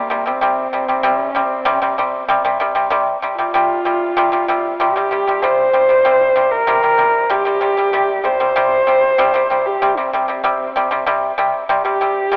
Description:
mongolian traditional, Mongolian folk; 96 BPM; 4/4; straight; A4 = 441 Hz
warm horsehead fiddle; melody; 0.0-12.4 s; Bb3 to C5; -16 LUFS; equal
pipa; arpeggios; 0.0-12.4 s; C3 to G3; -16 LUFS; equal
moderate huge ambient reverb, RT60 6.3 s; worn, warbling old tape, cassette tape, warbly pitch drift, telephone sound; -13 LUFS; side -31 dB against mid
0.0-12.4 A section
0.0 C5
0.41 | 1.04 1.67 2.29 2.92 | 3.54 4.17 4.80 5.42 | 6.05 6.67 7.30 7.93 | 8.55 9.18 9.81 10.43 | 11.06 11.68 12.31

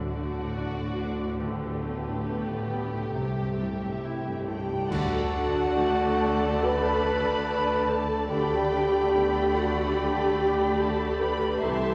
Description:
cinematic, emotional film score for orchestra; 72 BPM; 4/4; rubato; D mixolydian; A4 = 440 Hz
warm studio violin section; melody; 0.0-11.9 s; B4 to B5; -41 LUFS; equal
warm studio violin section; second line; 0.0-11.9 s; F#4 to C6; -36 LUFS; equal
dark concert grand piano; accompaniment; 0.0-11.9 s; C2 to A4; -37 LUFS; equal
warm studio viola section; accompaniment; 0.0-11.9 s; E3 to A4; -34 LUFS; equal
concert harp; arpeggios; 0.0-11.9 s; C3 to A4; -39 LUFS; equal
warm studio cello section; bass; 0.0-11.9 s; C3 to D3; -39 LUFS; equal
warm studio double bass section; bass; 0.0-11.9 s; C2 to D2; -38 LUFS; equal
cymbal swell, clash cymbals and concert bass drum; percussion; 1.4-6.6 s; -44 LUFS; equal
warm French horn section; sustained chords; 4.5-11.9 s; F#4 to B4; -29 LUFS; equal
wet scoring stage reverb, RT60 1.9 s; -27 LUFS; mono
0.0-4.9 A section; 4.9-11.9 B section
band accent 4.9-5.8
0.0 D; 1.4 Gadd9/D; 3.2 C6; 4.9 D
0.59 | 1.43 2.28 3.16 4.04 | 4.91 5.75 6.62 7.47 | 8.30 9.14 9.97 10.80 | 11.63

